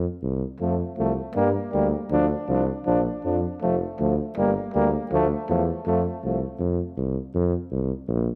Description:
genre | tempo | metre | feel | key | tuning
balkan folk, Balkan brass band | 160 BPM | 2/4 | swing 55% on 16ths | F major | A4 = 443 Hz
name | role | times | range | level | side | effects
mellow tuba | bass | 0.0-8.3 s | F1 to G2 | -28 LUFS | equal | none
mellow trombone | accompaniment | 0.6-6.4 s | A3 to D4 | -30 LUFS | equal | none
warm euphonium | accompaniment | 0.6-6.4 s | F3 to G3 | -29 LUFS | equal | none
room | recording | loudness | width
moderate concert hall reverb, RT60 2.1 s | none | -25 LUFS | mono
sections
0.6-6.6 A section; 6.6-8.4 B section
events
none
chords
0.0 N.C.; 0.6 F; 1.4 Gm; 2.1 Dm; 2.9 Bb; 3.6 F; 4.4 Gm; 5.1 Dm; 5.9 F; 6.6 F5

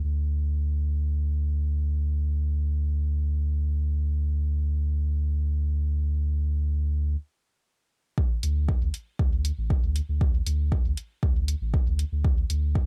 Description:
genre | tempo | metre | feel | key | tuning
dub techno | 118 BPM | 4/4 | straight | unclear | A4 = 441 Hz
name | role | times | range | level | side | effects
warm sub bass | bass | 0.0-12.8 s | A1 to D2 | -27 LUFS | equal | tube saturation, sidechain pumping
electronic kick drum | drums | 8.2-12.9 s | none | -26 LUFS | equal | overdrive
electronic hi-hat | drums | 8.4-12.6 s | none | -37 LUFS | equal | overdrive
room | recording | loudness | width
little or no reverb | none | -27 LUFS | mono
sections
0.0-8.2 A section; 8.2-12.9 B section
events
stop 7.2-8.2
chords
none

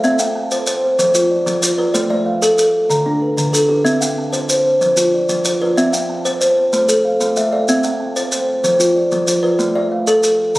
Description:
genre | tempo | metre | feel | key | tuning
southern african traditional, mbira-style interlocking cycle | 126 BPM (dotted quarters) | 12/8 | straight | C major | A4 = 440 Hz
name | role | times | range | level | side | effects
kalimba | arpeggios | 0.0-10.6 s | D3 to F5 | -17 LUFS | left 1 dB | none
kalimba | arpeggios | 0.0-10.6 s | D3 to A5 | -17 LUFS | right 1 dB | none
maracas | percussion | 0.0-10.6 s | none | -22 LUFS | equal | none
room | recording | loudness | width
wet recital hall reverb, RT60 1.8 s | recorded on a phone in the room, club reverb, compression | -13 LUFS | side -19 dB against mid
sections
0.0-10.6 A section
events
none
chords
0.0 C; 1.0 F5; 1.9 Am; 2.9 D5; 3.9 C; 4.8 F5; 5.8 C; 6.7 Am; 7.7 C; 8.6 F5; 9.6 Am

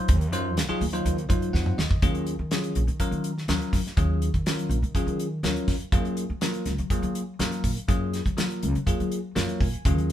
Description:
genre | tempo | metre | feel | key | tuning
electric jazz fusion | 123 BPM | 4/4 | straight | Eb dorian | A4 = 440 Hz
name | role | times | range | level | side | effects
bell-like tine electric piano | accompaniment | 0.0-10.1 s | Gb3 to Ab5 | -29 LUFS | left 1 dB | phaser
upright bass | bass | 0.1-10.1 s | Bb1 to Gb3 | -28 LUFS | equal | none
damped 70s drum kit | drums | 0.1-10.1 s | hi-hat, kick drum, snare drum, toms | -26 LUFS | equal | none
room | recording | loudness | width
moderate studio reverb, RT60 0.6 s | band playing live in one room | -23 LUFS | side -11 dB against mid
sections
0.0-2.0 A section; 2.0-10.1 B section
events
tine electric piano fill 1.3-2.0, 9.1-9.9; drum fill 1.5-2.0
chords
0.0 Ebm69; 2.0 Ebm11; 5.9 Gbmaj9

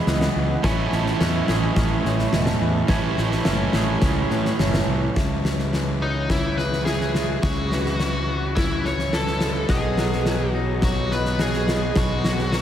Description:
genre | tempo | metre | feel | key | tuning
post-rock | 106 BPM | 4/4 | straight | unclear | A4 = 440 Hz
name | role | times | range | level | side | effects
pedal steel guitar | sustained chords | 0.0-5.1, 9.7-12.6 s | E4 to D#6 | -36 LUFS | left 4 dB | none
twangy electric guitar | arpeggios | 0.0-12.6 s | A2 to G#4 | -32 LUFS | left 3 dB | analog delay
vibraphone with medium hard mallets | arpeggios | 0.0-12.6 s | B4 to E5 | -33 LUFS | equal | analog delay
cranked stack guitar | riff | 0.0-5.2 s | A2 to E4 | -25 LUFS | right 5 dB | overdrive
fuzz fingered electric bass | bass | 0.1-12.6 s | E1 to A2 | -25 LUFS | equal | overdrive
huge arena drum kit | drums | 0.1-12.6 s | kick drum, snare drum | -24 LUFS | left 1 dB | none
nasal lead guitar with a parked wah | melody | 6.0-12.6 s | D#4 to C#5 | -26 LUFS | equal | overdrive, analog delay
room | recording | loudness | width
moderate huge ambient reverb, RT60 7.9 s | dreamy mix soaked in reverb | -19 LUFS | side -10 dB against mid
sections
0.0-5.2 A section; 5.2-12.6 B section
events
none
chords
0.0 Emaj7; 0.6 Amaj7; 5.2 C#m7; 9.7 B

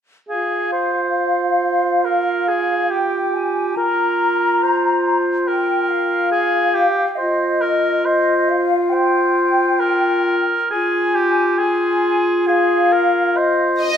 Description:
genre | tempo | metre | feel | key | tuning
cinematic, emotional film score for orchestra | 69 BPM | 4/4 | rubato | F minor | A4 = 440 Hz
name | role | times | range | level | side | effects
clear clarinet | second line | 0.3-13.9 s | F4 | -20 LUFS | equal | none
mellow flute section | second line | 0.3-14.0 s | Eb5 to Bb5 | -20 LUFS | left 2 dB | none
warm oboe | second line | 0.3-14.0 s | G4 to C5 | -20 LUFS | right 1 dB | none
warm symphonic violin section | melody | 13.8-14.0 s | Eb5 | -18 LUFS | equal | none
room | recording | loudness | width
moderate scoring stage reverb, RT60 1.8 s | none | -15 LUFS | side -8 dB against mid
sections
0.3-14.0 A section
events
none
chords
0.3 Fmadd9; 7.2 Cm/F; 10.7 Ab5/F

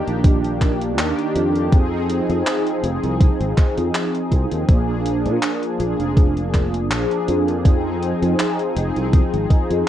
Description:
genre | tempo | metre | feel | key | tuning
vaporwave | 81 BPM | 4/4 | swing 54% on 16ths | F dorian | A4 = 440 Hz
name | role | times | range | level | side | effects
mellow synth brass | accompaniment | 0.0-9.9 s | Eb3 to Ab4 | -21 LUFS | equal | wide subtle chorus, analog delay
sustaining fretless electric bass | bass | 0.1-9.8 s | F1 to Bb2 | -22 LUFS | equal | ensemble chorus
gated 80s digital drum machine | drums | 0.1-9.8 s | handclaps, hi-hat | -26 LUFS | equal | gated reverb
electronic kick drum | drums | 0.2-9.7 s | none | -15 LUFS | equal | none
room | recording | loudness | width
light reverb | rough home demo mix, cassette tape | -16 LUFS | side -11 dB against mid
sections
0.0-9.9 A section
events
none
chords
0.0 Ebmaj7; 1.7 Fm7; 4.7 Bb7; 7.7 Fm7

